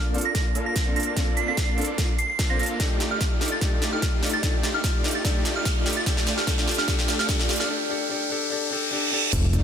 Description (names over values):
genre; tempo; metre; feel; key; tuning
future bass; 147 BPM; 4/4; swing 54% on 16ths, half-time; unclear; A4 = 440 Hz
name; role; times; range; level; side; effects
supersaw chords; riff; 0.0-9.6 s; A3 to F5; -30 LUFS; right 1 dB; cassette tape, sidechain pumping, low-pass filter, ping-pong delay
riser, reverse cymbal and impact; sound effects; 0.4-9.6 s; none; -31 LUFS; right 1 dB; none
bright concert grand piano; accompaniment; 0.1-9.3 s; C4 to C5; -32 LUFS; left 4 dB; sidechain pumping, ping-pong delay
big-room dance drum kit; drums; 0.1-9.6 s; crash cymbal, hi-hat, snare drum; -29 LUFS; right 1 dB; high-pass filter on snare, high-pass filter on hats, high-pass filter on cymbals
soft synth bell; melody; 0.3-7.7 s; F6 to C7; -30 LUFS; right 4 dB; chorus, phaser, sidechain pumping, digital delay
electronic kick drum; drums; 0.3-9.6 s; none; -25 LUFS; equal; none
fat analog bass; bass; 9.3-9.6 s; F1; -21 LUFS; equal; sidechain pumping
room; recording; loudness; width
light reverb; none; -21 LUFS; side -8 dB against mid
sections
0.0-9.3 A section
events
build-up 0.0-9.3; drum fill 0.0-7.7; filter sweep on supersaw synth 0.0-9.3; riser 0.4-9.3; reverse cymbal 8.5-9.3; impact 9.3-9.6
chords
0.0 Bbmaj7; 2.8 F13; 6.1 Dmadd11/A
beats
0.35 0.76 | 1.17 1.57 1.98 2.39 | 2.80 3.21 3.62 4.02 | 4.43 4.84 5.25 5.66 | 6.06 6.47 6.88 7.29 | 7.70 8.10 8.51 8.92 | 9.33